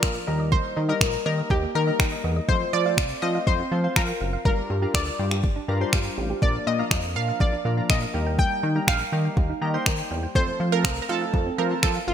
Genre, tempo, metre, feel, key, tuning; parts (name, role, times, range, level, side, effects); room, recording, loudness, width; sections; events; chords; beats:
dance-pop; 122 BPM; 4/4; straight; A4 = 440 Hz
analog pluck; melody; 0.0-12.1 s; F4 to G5; -27 LUFS; equal; chorus, ping-pong delay
glassy digital keys; accompaniment; 0.0-12.1 s; F3 to Bb5; -31 LUFS; left 2 dB; chorus, sidechain pumping
chorused synth bass; bass; 0.0-12.1 s; Gb1 to F3; -26 LUFS; equal; sidechain pumping
smooth R&B drum kit; drums; 0.0-11.9 s; finger snaps, kick drum; -24 LUFS; equal; gated reverb
thumb-piano-like synth pluck; arpeggios; 0.2-12.1 s; Eb3 to G5; -34 LUFS; right 4 dB; chorus, sidechain pumping, ping-pong delay
light reverb; bright 1980s-style digital production; -21 LUFS; side -9 dB against mid
0.0-12.1 A section
synth keys fill 5.4-6.4
0.3 Eb; 2.5 F; 4.5 Gm7; 6.4 Bb; 8.1 Eb; 10.4 F
0.03 | 0.52 1.01 1.50 2.00 | 2.49 2.98 3.47 3.96 | 4.45 4.95 5.44 5.93 | 6.42 6.91 7.41 7.90 | 8.39 8.88 9.37 9.86 | 10.36 10.85 11.34 11.83